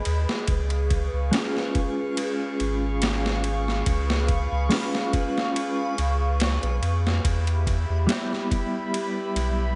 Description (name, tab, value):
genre	trip hop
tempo	71 BPM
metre	4/4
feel	swing 53% on 16ths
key	unclear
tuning	A4 = 440 Hz
part	warbly tape-like pad	sustained chords	0.0-9.8 s	G4 to C#6	-33 LUFS	equal	chorus, built-in reverb, phaser, vintage 12-bit sampler grit
part	backwards swelling texture	texture	0.0-9.8 s	B4	-41 LUFS	equal	built-in reverb
part	warm sub bass	bass	0.1-9.8 s	G#1 to E#2	-27 LUFS	equal	none
part	boom bap sampler-style drum kit	drums	0.1-9.6 s	hi-hat, kick drum, ride cymbal, snare drum	-31 LUFS	equal	none
part	mellow electric guitar	accompaniment	1.3-9.8 s	G3 to B4	-31 LUFS	equal	tremolo, vintage 12-bit sampler grit, tape echo
room	digital ambience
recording	nothing above 10.9 kHz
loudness	-25 LUFS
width	mono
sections	0.0-9.8 A section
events	none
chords	0.5 C#; 7.2 Em